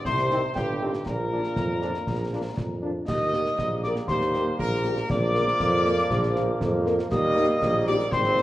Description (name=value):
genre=military-style march for wind band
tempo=119 BPM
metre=2/4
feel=straight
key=Eb major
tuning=A4 = 438 Hz
part: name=warm trumpet section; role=melody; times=0.0-8.4 s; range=G4 to Eb5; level=-29 LUFS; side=right 1 dB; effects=none
part: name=warm euphonium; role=second line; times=0.0-2.8 s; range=G2 to C3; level=-34 LUFS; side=right 2 dB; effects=none
part: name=mellow tuba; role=bass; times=0.0-8.4 s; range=G1 to F2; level=-27 LUFS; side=right 1 dB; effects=none
part: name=mellow wooden piccolo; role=second line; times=0.1-8.4 s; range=G5 to Eb6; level=-29 LUFS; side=left 2 dB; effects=none
part: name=concert snare drum, concert bass drum and clash cymbals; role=drums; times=0.1-8.4 s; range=none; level=-32 LUFS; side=equal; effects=none
part: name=mellow French horn section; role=accompaniment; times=0.3-8.4 s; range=Bb3 to Bb4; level=-33 LUFS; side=left 2 dB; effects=none
part: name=bright trombone section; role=sustained chords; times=0.3-8.4 s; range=Eb3 to D4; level=-32 LUFS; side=right 1 dB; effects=none
room=wet large studio reverb, RT60 1.4 s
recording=worn, warbling old tape, cassette tape, warbly pitch drift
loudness=-22 LUFS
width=side -15 dB against mid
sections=0.0-3.1 A section; 3.1-8.4 B section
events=none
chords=0.0 Cm; 1.1 Bb; 3.1 Eb; 5.1 Bb; 7.1 Eb